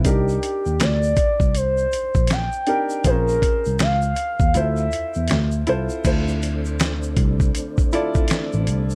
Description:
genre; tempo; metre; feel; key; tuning
R&B, neo-soul; 80 BPM; 4/4; swing 61% on 16ths; unclear; A4 = 440 Hz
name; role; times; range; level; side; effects
warm upright piano; accompaniment; 0.0-8.9 s; C4 to D5; -28 LUFS; equal; none
tine electric piano; bass; 0.0-8.9 s; A1 to E2; -25 LUFS; equal; overdrive, subtle chorus
dusty soul sampler-style drum kit; drums; 0.0-8.9 s; crash cymbal, hi-hat, kick drum, snare drum; -23 LUFS; equal; none
gliding portamento lead; melody; 0.1-5.7 s; G4 to G5; -25 LUFS; equal; chorus
tube shaker and finger snaps; percussion; 0.1-8.9 s; none; -38 LUFS; equal; none
tonewheel organ; sustained chords; 6.0-8.9 s; D3 to D4; -32 LUFS; equal; slow rotary speaker, chorus vibrato
room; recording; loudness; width
little or no reverb; dark, warm production; -20 LUFS; mono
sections
0.0-6.1 A section; 6.1-8.9 B section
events
kick muted 4.6-6.1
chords
0.1 Cm9; 3.1 Bbm9; 4.6 Dm9

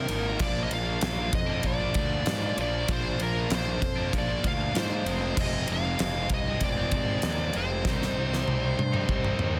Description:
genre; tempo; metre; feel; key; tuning
quiet-loud alternative rock; 97 BPM; 4/4; straight; unclear; A4 = 440 Hz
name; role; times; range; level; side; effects
high-gain lead guitar; melody; 0.0-9.6 s; Bb4 to F5; -34 LUFS; equal; distortion
cranked stack guitar; riff; 0.0-9.6 s; F2 to Eb4; -37 LUFS; equal; overdrive
high-gain distorted guitar; riff; 0.0-9.6 s; F2 to Eb4; -38 LUFS; equal; distortion
fuzz picked electric bass; bass; 0.0-9.6 s; F1 to Ab2; -33 LUFS; equal; overdrive
huge arena drum kit; drums; 0.1-9.5 s; crash cymbal, kick drum, ride cymbal, snare drum, toms; -32 LUFS; equal; none
room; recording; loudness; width
little or no reverb; dense, heavily limited modern master; -27 LUFS; mono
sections
0.0-9.6 A section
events
drum fill 7.8-9.6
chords
0.4 Bb; 5.1 Fm; 7.8 Cm

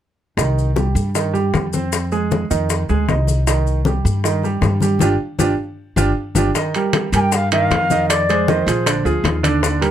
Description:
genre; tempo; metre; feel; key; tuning
Afro-Cuban jazz; 156 BPM; 4/4; straight; C minor; A4 = 441 Hz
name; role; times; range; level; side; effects
clear grand piano; accompaniment; 0.4-9.9 s; D3 to Eb5; -20 LUFS; right 4 dB; none
upright bass; bass; 0.4-9.9 s; G1 to G2; -20 LUFS; left 1 dB; none
bongos; percussion; 0.4-9.8 s; none; -26 LUFS; left 7 dB; none
congas; percussion; 0.4-9.9 s; none; -24 LUFS; left 5 dB; none
maracas; percussion; 0.4-9.9 s; none; -29 LUFS; left 11 dB; none
timbales; percussion; 6.7-9.9 s; none; -23 LUFS; right 4 dB; none
bright reedy bansuri; melody; 7.2-9.1 s; C5 to Ab5; -19 LUFS; left 1 dB; slapback echo
room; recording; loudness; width
light reverb; close, detailed microphones; -15 LUFS; side -10 dB against mid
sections
0.4-6.6 A section; 6.6-9.9 B section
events
band accent 5.0-6.6; drum fill 5.6-6.6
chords
0.4 Cmadd11; 1.9 Fm7; 3.5 Cm; 5.0 G5; 6.6 F9sus4; 8.1 Fm7; 8.9 Bb7

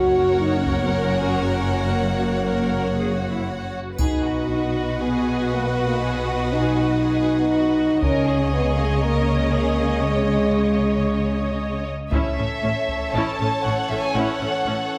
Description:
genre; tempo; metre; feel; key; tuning
cinematic, epic orchestral film score; 118 BPM; 4/4; straight; unclear; A4 = 440 Hz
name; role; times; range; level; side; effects
rich symphonic violin section; melody; 0.0-15.0 s; F#4 to A5; -32 LUFS; equal; none
rich chamber violin section; second line; 0.0-15.0 s; A4 to F#5; -32 LUFS; equal; none
clear symphonic viola section; accompaniment; 0.0-14.7 s; A3 to D#5; -31 LUFS; equal; none
mellow French horn section; sustained chords; 0.0-15.0 s; E3 to F#4; -25 LUFS; equal; none
rich symphonic cello section; bass; 0.0-14.7 s; F#2 to C#3; -30 LUFS; equal; none
rich symphonic double bass section; bass; 0.0-14.7 s; F#1 to C#2; -30 LUFS; equal; none
taiko ensemble; drums; 0.7-0.9, 4.0-5.0, 8.0-9.0, 12.1-13.1 s; none; -30 LUFS; equal; none
triangle; percussion; 4.0-5.0 s; none; -43 LUFS; equal; none
room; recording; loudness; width
moderate scoring stage reverb, RT60 1.9 s; none; -21 LUFS; mono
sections
0.0-12.1 A section; 12.1-15.0 B section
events
none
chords
0.0 F#; 4.0 B; 8.0 C#sus2; 12.1 A

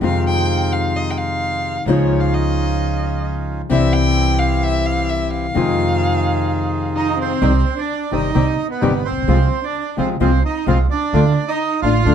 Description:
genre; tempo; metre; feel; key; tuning
tango; 130 BPM; 4/4; rubato; F minor, C harmonic minor from 7.4 s; A4 = 441 Hz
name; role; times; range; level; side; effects
warm violin; second line; 0.0-12.1 s; B3 to G5; -23 LUFS; left 2 dB; none
nylon-string guitar; accompaniment; 0.0-12.1 s; C3 to G4; -20 LUFS; left 6 dB; none
bandoneon; stabs; 0.0-12.1 s; Ab3 to Ab4; -27 LUFS; right 5 dB; none
upright bass; bass; 0.0-12.1 s; G1 to F2; -19 LUFS; right 2 dB; none
bandoneon; melody; 7.0-12.1 s; B3 to F5; -22 LUFS; right 8 dB; none
room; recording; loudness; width
moderate club reverb, RT60 0.8 s; dark, warm production; -15 LUFS; side -8 dB against mid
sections
0.0-7.4 A section; 7.4-12.1 B section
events
violin solo 0.0-7.4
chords
0.0 Fm7; 1.9 Dbadd9; 3.7 C; 5.6 Fm7; 7.4 Cm; 9.3 Fm/C; 11.1 Dm

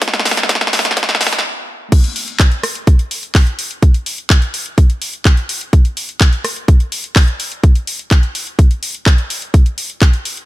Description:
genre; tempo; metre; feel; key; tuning
EDM; 126 BPM; 4/4; straight; none; none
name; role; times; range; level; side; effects
electronic kick drum; drums; 0.0-10.1 s; none; -9 LUFS; equal; high-pass filter on kick
house drum kit; drums; 0.0-10.5 s; crash cymbal, handclaps, hi-hat, rim click, snare drum; -17 LUFS; equal; none
room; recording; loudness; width
little or no reverb; high-pass filter; -12 LUFS; side -16 dB against mid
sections
0.0-1.9 A section; 1.9-10.5 B section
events
build-up 0.0-1.9; drum fill 0.0-1.4; filter sweep 0.0-1.9; stop 1.4-1.9; drop 1.9-10.5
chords
none

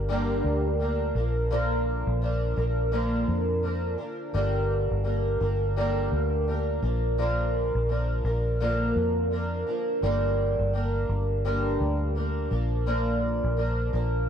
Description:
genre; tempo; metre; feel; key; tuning
acoustic pop; 84 BPM; 4/4; swing 60% on 16ths; unclear; A4 = 437 Hz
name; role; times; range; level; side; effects
fingerpicked twelve-string acoustic guitar; accompaniment; 0.0-14.3 s; G2 to Bb4; -27 LUFS; right 1 dB; double-tracked left and right
vintage muted fingered electric bass; bass; 0.0-14.3 s; G1 to F2; -27 LUFS; equal; none
room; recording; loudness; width
little or no reverb; dry, close 1970s-style studio recording; -24 LUFS; side -8 dB against mid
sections
0.0-14.3 A section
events
none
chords
0.0 Gm; 1.2 Bb; 4.3 Gm; 6.8 Bb; 10.0 Gm; 12.5 Bb

